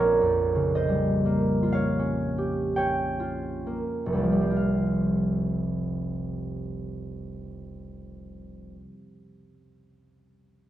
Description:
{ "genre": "classical", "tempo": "32-46 BPM", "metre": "3/4", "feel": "rubato", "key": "unclear", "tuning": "A4 = 440 Hz", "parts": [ { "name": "concert harp", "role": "accompaniment", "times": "0.0-9.2 s", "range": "F1 to G5", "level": "-24 LUFS", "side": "right 1 dB", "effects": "none" } ], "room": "moderate recital hall reverb, RT60 1.6 s", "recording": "dark, warm production, nothing above 10.8 kHz", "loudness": "-24 LUFS", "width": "side -12 dB against mid", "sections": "0.0-4.6 A section; 4.6-10.0 B section", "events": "slowing down 0.0-4.6", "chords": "0.0 Bbm6; 4.6 Fsus2" }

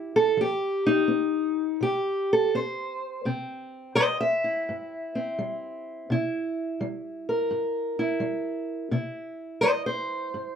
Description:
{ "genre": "acoustic country blues, solo or duo", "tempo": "84 BPM", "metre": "4/4", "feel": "swing 67% on 8ths", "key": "C mixolydian", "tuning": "A4 = 440 Hz", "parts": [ { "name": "fingerpicked steel-string acoustic guitar", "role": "solo", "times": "0.0-10.6 s", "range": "G2 to E5", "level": "-25 LUFS", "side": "equal", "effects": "none" } ], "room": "moderate small room reverb, RT60 0.6 s", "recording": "dark, warm production", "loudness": "-24 LUFS", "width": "side -7 dB against mid", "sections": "0.0-10.6 A section", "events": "steel-string acoustic guitar solo 0.0-10.6", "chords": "0.4 F5; 3.2 C7" }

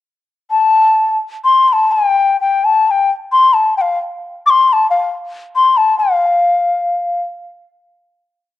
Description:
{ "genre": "indian classical", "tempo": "126-149 BPM", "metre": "3/4", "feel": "straight", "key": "unclear", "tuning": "A4 = 440 Hz", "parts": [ { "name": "hollow bansuri", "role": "solo", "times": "0.5-7.2 s", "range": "F5 to D6", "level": "-11 LUFS", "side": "left 3 dB", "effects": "cassette tape" } ], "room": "wet spring reverb, RT60 1.4 s", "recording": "home recording on cassette", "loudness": "-11 LUFS", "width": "side -14 dB against mid", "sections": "0.5-6.0 theme; 6.0-8.5 final note", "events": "speeding up 0.5-8.5", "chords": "none" }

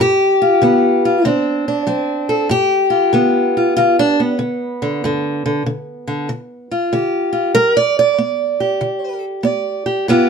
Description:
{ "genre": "acoustic country blues, solo or duo", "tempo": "95 BPM", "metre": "4/4", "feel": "swing 65% on 8ths", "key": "G mixolydian", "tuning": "A4 = 436 Hz", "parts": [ { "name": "fingerpicked steel-string acoustic guitar", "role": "solo", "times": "0.0-10.3 s", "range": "G2 to D5", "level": "-14 LUFS", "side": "equal", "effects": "none" } ], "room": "moderate studio reverb, RT60 0.5 s", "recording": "dark, warm production", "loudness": "-14 LUFS", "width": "side -6 dB against mid", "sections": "0.0-2.5 A section; 2.5-10.3 B section", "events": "steel-string acoustic guitar solo 0.0-2.5", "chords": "0.0 G7; 1.3 D7; 2.5 G7" }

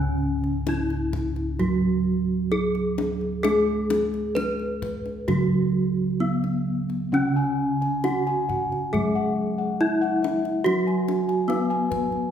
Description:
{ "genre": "Javanese gamelan", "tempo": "65-74 BPM", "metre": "4/4", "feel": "straight", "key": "C# slendro", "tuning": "A4 = 443 Hz", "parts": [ { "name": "gamelan-type bronze metallophone", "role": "melody", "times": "0.0-12.3 s", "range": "B3-25c to B4-25c", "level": "-26 LUFS", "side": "equal", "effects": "none" }, { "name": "gamelan-type bronze metallophone", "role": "accompaniment", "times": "0.0-12.3 s", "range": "C#3 to G#3", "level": "-26 LUFS", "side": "right 3 dB", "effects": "none" }, { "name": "gamelan-type bossed gongs", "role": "bass", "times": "0.0-12.3 s", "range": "C#2 to G#4", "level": "-28 LUFS", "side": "left 1 dB", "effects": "none" }, { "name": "kendang", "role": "percussion", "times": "0.4-12.2 s", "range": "none", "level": "-34 LUFS", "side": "left 4 dB", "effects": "none" }, { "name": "gamelan-type bossed gongs", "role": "arpeggios", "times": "7.1-12.1 s", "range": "B4-25c to G#5", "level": "-28 LUFS", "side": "left 4 dB", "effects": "none" } ], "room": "wet recital hall reverb, RT60 1.3 s", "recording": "recorded in a church or concert hall, faint mains hum", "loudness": "-22 LUFS", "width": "side -9 dB against mid", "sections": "0.0-12.3 A section", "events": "none", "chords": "none" }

